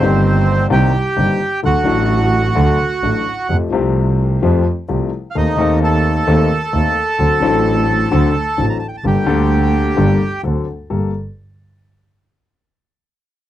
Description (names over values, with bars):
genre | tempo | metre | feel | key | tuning
tango | 130 BPM | 4/4 | rubato | G minor | A4 = 440 Hz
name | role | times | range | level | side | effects
bandoneon | melody | 0.0-10.4 s | C4 to Bb5 | -18 LUFS | right 2 dB | none
warm grand piano | accompaniment | 0.0-11.1 s | G1 to A4 | -18 LUFS | left 5 dB | none
warm double bass | bass | 0.0-11.1 s | G1 to F2 | -17 LUFS | right 2 dB | none
room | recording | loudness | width
little or no reverb | dry, close 1970s-style studio recording | -13 LUFS | side -12 dB against mid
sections
0.0-10.9 A section; 10.9-12.8 B section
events
none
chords
0.0 Cm7; 1.6 D; 3.5 Fadd9; 5.4 Adim/Eb; 7.2 D7; 9.0 Gmadd9; 10.4 D7; 10.9 Gmadd9